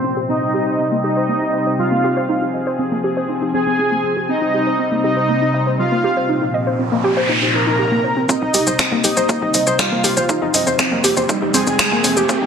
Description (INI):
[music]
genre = melodic techno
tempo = 120 BPM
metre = 4/4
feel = straight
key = C minor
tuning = A4 = 440 Hz
[part]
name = soft supersaw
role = melody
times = 0.0-12.5 s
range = C4 to Bb4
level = -22 LUFS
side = equal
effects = sidechain pumping, digital delay
[part]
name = soft supersaw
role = second line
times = 0.0-12.5 s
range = C5 to Bb5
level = -24 LUFS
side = right 1 dB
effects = cassette tape, sidechain pumping, digital delay
[part]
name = warm analog pad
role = sustained chords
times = 0.0-12.5 s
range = Bb2 to Ab4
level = -24 LUFS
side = left 2 dB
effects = lush chorus, sidechain pumping
[part]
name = warbly dusty pluck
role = arpeggios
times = 0.0-12.5 s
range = G3 to Eb5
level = -20 LUFS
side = equal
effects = chorus, sidechain pumping, digital delay
[part]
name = analog drone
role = drone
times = 0.0-12.5 s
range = C3 to C4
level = -29 LUFS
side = equal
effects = chorus, sidechain pumping
[part]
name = noise sweep and riser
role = sound effects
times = 6.7-12.5 s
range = none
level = -24 LUFS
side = right 1 dB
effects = none
[part]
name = electronic kick drum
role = drums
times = 8.3-12.4 s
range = none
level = -23 LUFS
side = equal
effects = overdrive, high-pass filter on kick
[part]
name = punchy analog drum machine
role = drums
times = 8.3-12.4 s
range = finger snaps, hi-hat, shaker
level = -18 LUFS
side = left 1 dB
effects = gated reverb
[part]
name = tight sequencer bass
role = bass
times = 8.4-12.5 s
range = C2 to G2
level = -27 LUFS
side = equal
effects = sidechain pumping, high-pass filter
[sound]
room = wet lush hall reverb, RT60 1.9 s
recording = bright 1980s-style digital production, low-pass filter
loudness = -15 LUFS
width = side -7 dB against mid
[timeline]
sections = 0.0-8.3 A section; 8.3-12.5 B section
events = filter sweep 0.0-8.3; noise sweep 6.7-8.3; build-up 8.3-12.5; riser 9.4-12.5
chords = 0.3 Cm; 2.3 Fm; 4.3 Cm; 6.3 Bb5; 8.3 Cm; 10.3 Fm